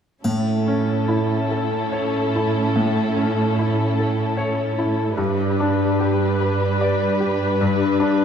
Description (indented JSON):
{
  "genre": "cinematic, emotional film score for orchestra",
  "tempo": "49 BPM (dotted quarters)",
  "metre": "6/8",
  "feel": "rubato",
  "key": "unclear",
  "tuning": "A4 = 440 Hz",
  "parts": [
    { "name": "dark studio violin section", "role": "melody", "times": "0.2-8.2 s", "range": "A4 to B4", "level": "-26 LUFS", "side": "left 3 dB", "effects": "none" },
    { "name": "bright baby grand piano", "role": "accompaniment", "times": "0.2-8.2 s", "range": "G2 to D5", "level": "-23 LUFS", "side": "equal", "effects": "none" },
    { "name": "warm studio viola section", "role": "accompaniment", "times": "0.2-8.2 s", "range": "C#4 to G4", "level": "-27 LUFS", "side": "right 2 dB", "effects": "none" },
    { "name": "concert harp", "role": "arpeggios", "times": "0.2-8.2 s", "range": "G2 to D5", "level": "-26 LUFS", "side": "left 8 dB", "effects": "none" },
    { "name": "warm studio cello section", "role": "bass", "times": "0.2-8.2 s", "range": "G2 to A2", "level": "-24 LUFS", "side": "right 5 dB", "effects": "none" },
    { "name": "triangle", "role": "percussion", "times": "0.2-1.9 s", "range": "none", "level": "-40 LUFS", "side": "left 2 dB", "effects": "none" }
  ],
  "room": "moderate concert hall reverb, RT60 2.4 s",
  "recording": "dark, warm production",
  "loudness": "-18 LUFS",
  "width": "side -8 dB against mid",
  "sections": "0.2-8.2 A section",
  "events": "none",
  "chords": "0.2 A; 5.2 G"
}